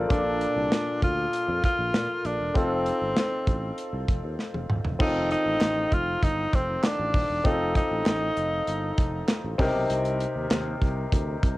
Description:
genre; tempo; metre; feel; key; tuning
1980s-style pop; 98 BPM; 4/4; straight; unclear; A4 = 441 Hz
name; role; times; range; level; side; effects
warm grand piano; accompaniment; 0.0-11.6 s; Bb2 to D5; -29 LUFS; left 2 dB; cassette tape
sustaining fretless electric bass; bass; 0.0-11.6 s; Eb1 to Bb2; -32 LUFS; equal; none
clear tenor saxophone; melody; 0.1-9.6 s; C4 to F4; -27 LUFS; equal; cassette tape, tape echo
modern studio drum kit; drums; 0.1-11.6 s; crash cymbal, hi-hat, kick drum, snare drum, toms; -26 LUFS; equal; cassette tape
group handclap; percussion; 5.6-10.7 s; none; -41 LUFS; right 3 dB; none
room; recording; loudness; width
moderate studio reverb, RT60 0.5 s; home recording on cassette; -23 LUFS; side -18 dB against mid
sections
0.0-5.0 A section; 5.0-11.6 B section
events
drum fill 4.4-5.0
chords
0.1 Bbmaj7; 2.6 F7; 9.6 Cm7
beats
| 0.10 0.72 1.33 1.94 | 2.55 3.17 3.78 4.39 | 5.00 5.61 6.23 6.84 | 7.45 8.06 8.68 9.29 | 9.90 10.51 11.12

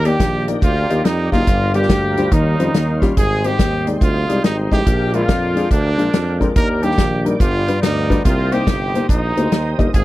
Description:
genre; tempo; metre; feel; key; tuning
uptempo gospel; 142 BPM; 4/4; swing 65% on 8ths; Eb major; A4 = 440 Hz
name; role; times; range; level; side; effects
bright trumpet; melody; 0.0-10.0 s; D4 to Bb4; -22 LUFS; right 3 dB; none
warm horn section; melody; 0.0-10.0 s; F3 to D5; -24 LUFS; left 3 dB; none
dark grand piano; accompaniment; 0.0-10.0 s; G2 to F5; -21 LUFS; left 2 dB; none
tonewheel organ; sustained chords; 0.0-10.0 s; G3 to Eb6; -30 LUFS; right 3 dB; slow rotary speaker, chorus vibrato
warm tuba; bass; 0.0-10.0 s; Gb1 to F2; -20 LUFS; equal; none
natural country drum kit; drums; 0.0-10.0 s; hi-hat, kick drum, snare drum; -18 LUFS; equal; none
room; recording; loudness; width
little or no reverb; dry, close 1970s-style studio recording; -14 LUFS; side -16 dB against mid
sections
0.0-10.0 A section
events
none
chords
0.0 Ebmaj7; 1.5 Gm7; 2.3 Eb13; 3.2 Abmaj7; 4.9 Bb7; 6.6 Ebmaj7; 7.4 G7; 8.3 Cm7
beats
0.20 0.63 1.05 | 1.48 1.90 2.32 2.75 | 3.17 3.60 4.02 4.44 | 4.87 5.29 5.71 6.14 | 6.56 6.98 7.41 7.83 | 8.25 8.67 9.10 9.52 | 9.94

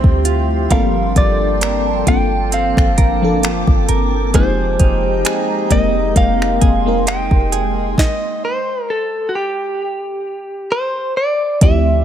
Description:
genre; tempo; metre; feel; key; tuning
contemporary R&B; 66 BPM; 4/4; swing 54% on 16ths; unclear; A4 = 441 Hz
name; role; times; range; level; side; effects
direct-recorded clean electric guitar; melody; 0.0-12.0 s; F#4 to G5; -19 LUFS; equal; digital delay
FM electric piano with soft pad layer; accompaniment; 0.0-12.0 s; F3 to Bb4; -20 LUFS; left 2 dB; chorus, phaser
glassy FM pad; sustained chords; 0.0-12.0 s; Ab3 to D6; -25 LUFS; equal; ensemble chorus, built-in reverb, phaser
direct-recorded clean electric guitar; arpeggios; 0.0-8.6 s; D3 to Bb4; -24 LUFS; right 10 dB; digital delay
clean 808-style bass; bass; 0.0-12.0 s; F1 to D2; -19 LUFS; equal; none
smooth R&B drum kit; drums; 0.0-11.8 s; finger snaps, hi-hat, kick drum, snare drum; -15 LUFS; equal; none
room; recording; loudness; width
digital ambience; none; -13 LUFS; side -10 dB against mid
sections
0.0-11.6 A section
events
stop 8.0-11.6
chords
0.0 Dm11; 0.7 Gm11; 4.3 Fm11; 8.0 N.C.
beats
| 0.71 1.61 2.52 3.43 | 4.34 5.25 6.16 7.07 | 7.98 8.89 9.80 10.71 | 11.62

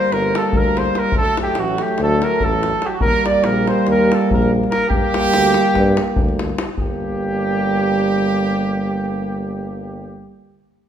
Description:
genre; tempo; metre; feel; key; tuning
balkan folk, Balkan brass band; 287 BPM (eighths); 9/8; straight; G harmonic minor; A4 = 441 Hz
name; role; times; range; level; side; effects
warm flugelhorn; melody; 0.0-10.3 s; F#4 to D5; -21 LUFS; equal; none
clear trumpet; second line; 0.0-10.3 s; F#4 to D5; -26 LUFS; right 6 dB; none
mellow euphonium; accompaniment; 0.0-10.3 s; F#3 to G3; -22 LUFS; right 4 dB; none
warm French horn; accompaniment; 0.0-10.3 s; A3 to Bb3; -24 LUFS; left 5 dB; none
davul; percussion; 0.0-7.0 s; none; -23 LUFS; left 1 dB; none
mellow tuba; bass; 0.1-10.3 s; G1 to G2; -24 LUFS; equal; none
room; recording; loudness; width
wet recital hall reverb, RT60 1.4 s; minimal, uncompressed stereo recording; -15 LUFS; side -9 dB against mid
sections
0.0-6.8 A section; 6.8-10.5 B section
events
none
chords
0.0 Gm; 1.1 D; 3.0 Eb; 4.9 Gm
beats
0.07 0.28 0.49 0.70 0.92 | 1.12 1.33 1.54 1.75 1.97 2.17 2.38 2.60 2.80 | 3.01 3.22 3.43 3.64 3.85 4.06 4.27 4.48 4.69 | 4.90 5.11 5.32 5.53 5.74 5.94 6.15 6.36 6.57 | 6.78 6.99 7.20 7.41 7.61 7.82 8.03 8.24 8.45 | 8.66 8.86 9.07 9.28 9.49 9.70 9.90 10.11 10.32

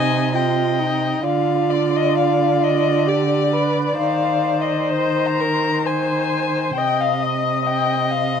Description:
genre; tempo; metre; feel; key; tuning
classical, slow romantic movement for string quartet; 66 BPM; 3/4; rubato; C minor; A4 = 441 Hz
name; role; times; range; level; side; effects
muted violin; melody; 0.0-8.4 s; D5 to Bb5; -22 LUFS; left 9 dB; none
muted violin; second line; 0.0-8.4 s; Bb4 to Eb5; -24 LUFS; left 2 dB; none
muted viola; accompaniment; 0.0-8.4 s; Eb4 to Eb5; -23 LUFS; right 3 dB; none
muted cello; bass; 0.0-8.4 s; C3 to Eb3; -22 LUFS; right 4 dB; none
room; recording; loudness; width
light reverb; dark, warm production, faint mains hum; -17 LUFS; side -7 dB against mid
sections
0.0-8.4 A section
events
none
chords
0.0 Cm; 1.2 Dmadd11; 4.0 Cm/Eb; 6.8 Cm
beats
0.34 | 1.25 2.17 3.07 | 3.97 4.93 5.86 | 6.76 7.67

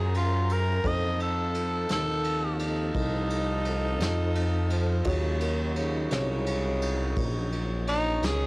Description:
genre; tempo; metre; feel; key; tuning
slow blues; 57 BPM (dotted quarters); 12/8; straight; unclear; A4 = 440 Hz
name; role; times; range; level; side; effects
growling tenor saxophone; melody; 0.0-8.5 s; Eb4 to Eb5; -29 LUFS; equal; none
dark upright piano; accompaniment; 0.0-8.5 s; Db4 to Db5; -38 LUFS; right 1 dB; cassette tape
tonewheel organ; sustained chords; 0.0-8.5 s; E3 to Bb4; -37 LUFS; equal; none
warm horn section; sustained chords; 0.0-8.5 s; Db4 to Bb5; -38 LUFS; left 1 dB; cassette tape
smooth gliding synth bass; bass; 0.0-8.5 s; Bb1 to Gb2; -28 LUFS; equal; transformer saturation
vintage brush drum kit; drums; 0.1-8.4 s; kick drum, ride cymbal, snare drum; -34 LUFS; equal; cassette tape
growling tenor saxophone; second line; 2.6-7.7 s; Db3 to Eb4; -33 LUFS; right 1 dB; cassette tape
room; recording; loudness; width
small room ambience; home recording on cassette; -25 LUFS; side -25 dB against mid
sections
0.0-8.5 A section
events
none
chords
0.0 Bbm7; 0.8 F7; 5.1 Ebm7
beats
| 0.83 1.89 2.94 4.00 | 5.06 6.11 7.17 8.23

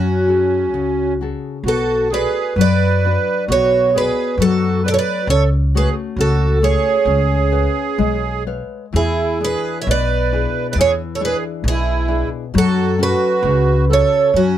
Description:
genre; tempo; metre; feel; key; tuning
fado-style ballad; 66 BPM; 2/4; rubato; F# minor; A4 = 441 Hz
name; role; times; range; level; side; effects
picked twelve-string acoustic guitar; melody; 0.0-14.6 s; F#4 to E5; -18 LUFS; right 2 dB; none
accordion; second line; 0.0-14.6 s; C#4 to C#5; -22 LUFS; right 5 dB; light tremolo tuning
nylon-string guitar; accompaniment; 0.0-14.6 s; B2 to E#5; -22 LUFS; left 6 dB; none
upright bass; bass; 0.0-14.6 s; B1 to F#2; -19 LUFS; equal; none
room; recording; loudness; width
light reverb; dark, warm production; -14 LUFS; side -11 dB against mid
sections
0.0-1.6 A section; 1.6-14.6 B section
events
none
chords
0.0 F#madd9; 1.6 Bm; 5.3 F#m/C#; 7.1 C#7; 8.9 E7; 12.5 F#m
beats
0.72 | 1.65 2.57 | 3.48 4.39 | 5.28 6.17 | 7.06 7.98 | 8.94 9.87 | 10.77 11.64 | 12.53 13.43 | 14.33

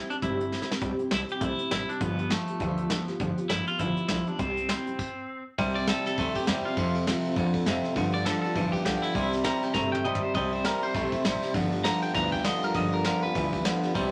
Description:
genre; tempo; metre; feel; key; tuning
rockabilly; 201 BPM; 4/4; swing 59% on 8ths; C major; A4 = 440 Hz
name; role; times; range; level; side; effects
twangy electric guitar; melody; 0.0-14.1 s; A3 to Bb5; -34 LUFS; equal; none
picked steel-string acoustic guitar; accompaniment; 0.0-14.1 s; G2 to A4; -33 LUFS; equal; none
upright bass; bass; 0.1-14.1 s; G1 to G2; -39 LUFS; equal; none
soft brush drum kit; drums; 0.1-14.0 s; crash cymbal, hi-hat, kick drum, ride cymbal, snare drum, toms; -35 LUFS; equal; none
twangy electric guitar; riff; 0.8-14.1 s; F2 to A3; -33 LUFS; equal; none
room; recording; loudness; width
wet studio reverb, RT60 0.7 s; none; -28 LUFS; mono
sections
0.0-5.6 A section; 5.6-14.1 B section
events
drum fill 0.5, 9.8-10.4; stop 5.0-5.6; clean electric guitar solo 5.6-14.1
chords
0.0 C; 2.0 G7; 4.4 C; 6.8 F; 8.0 G7; 9.2 C; 11.6 G7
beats
0.23 0.53 | 0.82 1.12 1.42 1.72 | 2.02 2.31 2.61 2.91 | 3.21 3.50 3.80 4.10 | 4.40 4.70 4.99 5.29 | 5.59 5.88 6.18 6.48 | 6.78 7.08 7.37 7.67 | 7.97 8.27 8.56 8.86 | 9.16 9.46 9.76 10.06 | 10.36 10.65 10.95 11.25 | 11.55 11.85 12.15 12.45 | 12.75 13.05 13.35 13.65 | 13.95

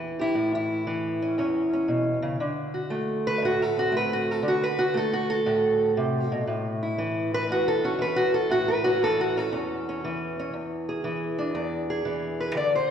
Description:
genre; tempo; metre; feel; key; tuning
acoustic country blues, solo or duo; 118 BPM; 4/4; swing 68% on 8ths; A major; A4 = 439 Hz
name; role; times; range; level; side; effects
fingerpicked steel-string acoustic guitar; solo; 0.0-12.9 s; E2 to D5; -23 LUFS; equal; none
room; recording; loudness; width
wet concert hall reverb, RT60 2.2 s; recorded in a church or concert hall; -23 LUFS; side -8 dB against mid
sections
0.0-12.9 A section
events
steel-string acoustic guitar solo 0.0-12.9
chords
0.0 A; 2.4 D7; 6.5 A; 10.5 E7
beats
| 0.36 0.87 1.38 1.89 | 2.40 2.91 3.42 3.93 | 4.44 4.95 5.46 5.96 | 6.47 6.98 7.49 8.00 | 8.51 9.01 9.52 10.03 | 10.54 11.04 11.55 12.06 | 12.57

